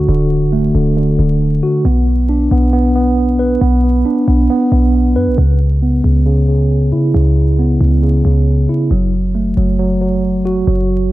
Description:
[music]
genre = hip hop, trap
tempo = 136 BPM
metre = 4/4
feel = half-time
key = C# phrygian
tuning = A4 = 440 Hz
[part]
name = mellow tine electric piano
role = arpeggios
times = 0.0-11.1 s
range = C#3 to B4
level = -13 LUFS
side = right 1 dB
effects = slow stereo tremolo, low-pass filter, ping-pong delay
[part]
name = clean 808-style bass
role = bass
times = 0.0-11.1 s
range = D1 to C#3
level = -14 LUFS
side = equal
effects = none
[sound]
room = little or no reverb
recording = vinyl crackle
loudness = -11 LUFS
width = side -16 dB against mid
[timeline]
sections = 0.0-5.4 A section; 5.4-11.1 B section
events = filter sweep on tine electric piano 5.4-11.1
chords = 0.0 D; 1.9 Bm; 5.4 C#m7; 8.9 F#m

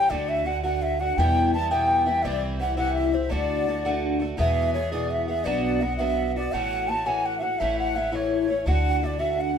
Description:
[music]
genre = celtic folk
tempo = 112 BPM (dotted quarters)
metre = 6/8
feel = straight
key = D mixolydian, E mixolydian from 4.4 s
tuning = A4 = 440 Hz
[part]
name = bright reedy bass bansuri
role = melody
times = 0.0-9.6 s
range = C5 to A5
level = -26 LUFS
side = equal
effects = none
[part]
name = bright baroque flute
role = second line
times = 0.0-9.6 s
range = C#5 to A5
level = -32 LUFS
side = left 4 dB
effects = none
[part]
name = fingerpicked twelve-string acoustic guitar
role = accompaniment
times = 0.0-9.6 s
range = E2 to G#4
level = -26 LUFS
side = equal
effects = none
[part]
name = upright bass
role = bass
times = 0.0-9.6 s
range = A1 to E2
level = -29 LUFS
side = equal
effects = none
[sound]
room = moderate stone room reverb, RT60 1.0 s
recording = band playing live in one room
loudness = -22 LUFS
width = side -7 dB against mid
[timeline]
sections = 0.0-4.4 A section; 4.4-9.6 B section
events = none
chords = 0.1 D; 1.2 Em; 2.2 C; 3.3 D; 4.4 E; 5.5 Bm; 6.5 F#m7/A; 7.6 A; 8.7 D

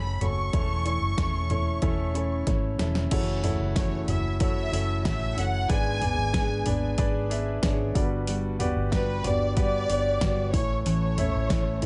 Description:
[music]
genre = piano-driven pop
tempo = 93 BPM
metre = 4/4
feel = straight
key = F# minor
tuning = A4 = 439 Hz
[part]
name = warm symphonic violin section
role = melody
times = 0.0-11.9 s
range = B4 to C#6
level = -33 LUFS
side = equal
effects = none
[part]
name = warm concert grand piano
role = accompaniment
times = 0.0-11.9 s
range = G2 to E5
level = -34 LUFS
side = equal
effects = none
[part]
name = fingerpicked steel-string acoustic guitar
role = riff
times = 0.0-11.9 s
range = F#2 to A4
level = -36 LUFS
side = equal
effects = none
[part]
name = vintage muted fingered electric bass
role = bass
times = 0.0-11.9 s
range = E1 to A1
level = -32 LUFS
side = equal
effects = none
[part]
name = deep house drum kit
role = drums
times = 0.2-11.9 s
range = crash cymbal, hi-hat, kick drum, snare drum, toms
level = -31 LUFS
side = equal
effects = none
[sound]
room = little or no reverb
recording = nothing above 10.8 kHz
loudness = -26 LUFS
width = mono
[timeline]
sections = 0.0-3.1 A section; 3.1-11.9 B section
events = drum fill 2.5-3.1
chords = 0.0 F#m; 0.5 A/E; 3.1 F#m7; 5.7 G#dim; 8.0 Gmaj7; 10.5 A

